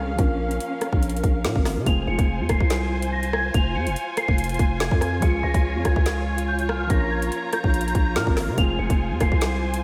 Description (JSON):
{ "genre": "hip hop, drill", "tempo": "143 BPM", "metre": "4/4", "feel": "half-time", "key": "F minor", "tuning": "A4 = 441 Hz", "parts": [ { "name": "dark concert grand piano", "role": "accompaniment", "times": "0.0-9.8 s", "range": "F3 to Bb4", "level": "-35 LUFS", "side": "equal", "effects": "none" }, { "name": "warm studio string section", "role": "sustained chords", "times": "0.0-9.8 s", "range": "Db4 to Bb5", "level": "-32 LUFS", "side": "equal", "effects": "none" }, { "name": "growling 808-style bass", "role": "bass", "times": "0.0-9.8 s", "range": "F1 to Db3", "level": "-28 LUFS", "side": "equal", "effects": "none" }, { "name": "drill drum kit", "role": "drums", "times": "0.2-9.8 s", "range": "hi-hat, kick drum, rim click, snare drum", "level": "-25 LUFS", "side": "equal", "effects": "none" }, { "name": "large celesta", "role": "melody", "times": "1.9-9.8 s", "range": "F6 to F7", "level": "-31 LUFS", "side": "equal", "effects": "ensemble chorus, diffuse ambient delay" } ], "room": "moderate lush hall reverb, RT60 1.8 s, small room ambience", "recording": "dreamy mix soaked in reverb", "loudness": "-23 LUFS", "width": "mono", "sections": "0.0-1.9 A section; 1.9-9.8 B section", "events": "break 0.0-1.9", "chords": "0.2 Bbm; 1.9 Fm; 5.2 Db; 6.9 Bbm; 8.6 Fm", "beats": "| 0.19 0.61 1.03 1.45 | 1.86 2.28 2.70 3.12 | 3.54 3.96 4.38 4.80 | 5.22 5.64 6.06 6.48 | 6.90 7.32 7.74 8.16 | 8.58 9.00 9.42" }